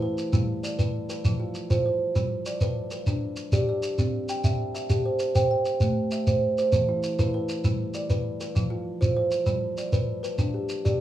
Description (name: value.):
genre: southern african traditional, mbira-style interlocking cycle.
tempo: 131 BPM (dotted quarters).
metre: 12/8.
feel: straight.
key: G mixolydian.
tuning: A4 = 440 Hz.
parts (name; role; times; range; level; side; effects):
kalimba; arpeggios; 0.0-11.0 s; E3 to G5; -26 LUFS; right 1 dB; none.
shekere; percussion; 0.2-11.0 s; none; -26 LUFS; equal; none.
room: wet small room reverb, RT60 0.5 s.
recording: rough home demo mix, small room ambience.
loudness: -23 LUFS.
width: side -13 dB against mid.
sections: 0.0-9.5 A section; 9.5-11.0 B section.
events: none.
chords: 0.3 G; 1.2 F5; 2.2 G; 4.0 C; 5.8 Am; 6.7 E5; 7.6 G; 8.6 F5; 9.5 G.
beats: | 0.32 0.78 1.24 1.70 | 2.15 2.61 3.07 3.53 | 3.98 4.44 4.90 5.35 | 5.81 6.27 6.72 7.18 | 7.64 8.10 8.55 9.01 | 9.47 9.92 10.38 10.84.